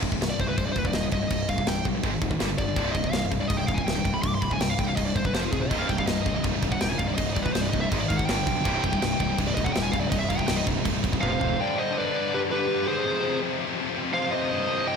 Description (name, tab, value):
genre	heavy metal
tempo	164 BPM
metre	4/4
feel	straight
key	C minor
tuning	A4 = 439 Hz
part	heavy high-gain guitar	riff	0.0-15.0 s	C2 to Ab3	-30 LUFS	left 11 dB	distortion
part	high-gain distorted guitar	riff	0.0-11.6 s	C2 to Ab3	-31 LUFS	right 11 dB	distortion
part	fuzz picked electric bass	bass	0.0-11.5 s	C1 to B1	-31 LUFS	equal	overdrive
part	tight metal drum kit	drums	0.0-11.5 s	crash cymbal, kick drum, snare drum, toms	-29 LUFS	equal	none
part	high-gain lead guitar	melody	0.3-15.0 s	F4 to D6	-29 LUFS	equal	distortion, slapback echo
part	scooped high-gain guitar	riff	5.7-15.0 s	C2 to Eb4	-33 LUFS	right 2 dB	distortion
part	high-gain lead guitar	second line	11.2-15.0 s	G4 to Eb5	-30 LUFS	right 3 dB	distortion
room	moderate lush hall reverb, RT60 1.6 s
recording	big arena sound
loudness	-23 LUFS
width	side -6 dB against mid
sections	0.0-11.6 A section; 11.6-15.0 B section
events	lead electric guitar solo 0.0-11.6; drum fill 11.2-11.6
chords	0.0 Cm; 2.0 Ab5; 2.4 G5; 2.8 C5; 5.3 F5; 5.7 Cm; 7.9 Ab5; 8.3 G5; 8.6 Cm; 11.2 F5; 11.6 G; 13.0 Fm